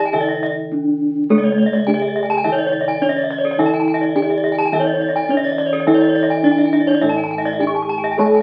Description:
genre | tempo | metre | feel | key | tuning
Balinese gamelan | 105 BPM | 4/4 | straight | unclear | A4 = 440 Hz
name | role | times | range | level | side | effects
gamelan-type bronze metallophone | melody | 0.0-8.4 s | A3-40c to A4-40c | -22 LUFS | equal | none
gamelan-type bronze metallophone | accompaniment | 0.0-8.4 s | E3-50c to A3-40c | -27 LUFS | equal | none
gamelan-type bronze metallophone | arpeggios | 0.0-8.3 s | A4-40c to C#6 | -24 LUFS | equal | none
gamelan-type bossed gongs | bass | 0.0-8.4 s | C#2 to A4-40c | -24 LUFS | equal | none
gamelan-type bronze metallophone | arpeggios | 0.1-8.4 s | A4-40c to C#6 | -25 LUFS | equal | none
room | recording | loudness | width
moderate studio reverb, RT60 0.5 s | very old 78 rpm record, vinyl crackle | -17 LUFS | mono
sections
0.0-1.3 A section; 1.3-8.4 B section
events
none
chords
none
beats
0.14 0.72 | 1.30 1.87 2.44 3.02 | 3.59 4.16 4.73 5.30 | 5.87 6.44 7.02 7.60 | 8.19

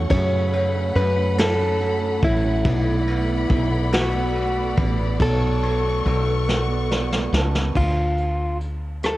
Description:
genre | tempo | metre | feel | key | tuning
six-eight pop ballad | 47 BPM (dotted quarters) | 6/8 | straight | unclear | A4 = 440 Hz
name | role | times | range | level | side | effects
warm concert grand piano | accompaniment | 0.0-7.8 s | C#3 to A5 | -30 LUFS | right 9 dB | cassette tape
warm studio string section | sustained chords | 0.0-7.7 s | A3 to C#6 | -29 LUFS | left 2 dB | cassette tape
woody fretless electric bass | bass | 0.0-9.2 s | A1 to F#2 | -22 LUFS | equal | none
direct-recorded clean electric guitar | melody | 0.1-9.2 s | E4 to C#5 | -24 LUFS | equal | cassette tape
vintage brush drum kit | drums | 0.1-9.2 s | crash cymbal, hi-hat, kick drum, ride cymbal, rim click, snare drum | -26 LUFS | equal | cassette tape
room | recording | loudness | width
studio ambience | home recording on cassette | -19 LUFS | side -16 dB against mid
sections
0.0-7.8 A section; 7.8-9.2 B section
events
drum fill 6.5-7.8; grand piano fill 6.5-7.8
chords
0.0 F#m; 2.7 Bm7; 7.8 Dm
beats
| 0.10 1.38 | 2.65 3.93 | 5.20 6.48 | 7.75 9.03

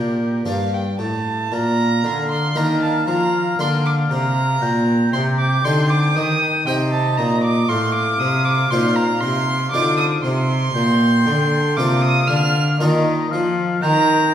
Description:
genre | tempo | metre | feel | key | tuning
classical, baroque-style sonata movement with continuo | 58 BPM | 3/4 | straight | Bb major | A4 = 441 Hz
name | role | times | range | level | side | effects
warm oboe | melody | 0.0-14.3 s | G4 to G5 | -25 LUFS | left 5 dB | none
rich violin | second line | 0.0-14.3 s | Bb4 to F6 | -22 LUFS | right 3 dB | none
harpsichord | accompaniment | 0.0-14.3 s | G2 to G4 | -23 LUFS | left 1 dB | none
rich cello | bass | 0.0-14.3 s | G2 to F3 | -20 LUFS | right 1 dB | none
room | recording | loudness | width
wet recital hall reverb, RT60 1.5 s | heard from further back in the room | -16 LUFS | side -10 dB against mid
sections
0.0-1.5 A section; 1.5-14.3 A section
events
none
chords
0.0 Gm; 1.5 Bb; 4.6 Cm7/Bb; 7.7 F7/A; 10.7 Bb; 13.8 Eb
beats
0.47 | 1.52 2.56 3.60 | 4.62 5.65 6.67 | 7.69 8.71 9.73 | 10.75 11.77 12.80 | 13.83

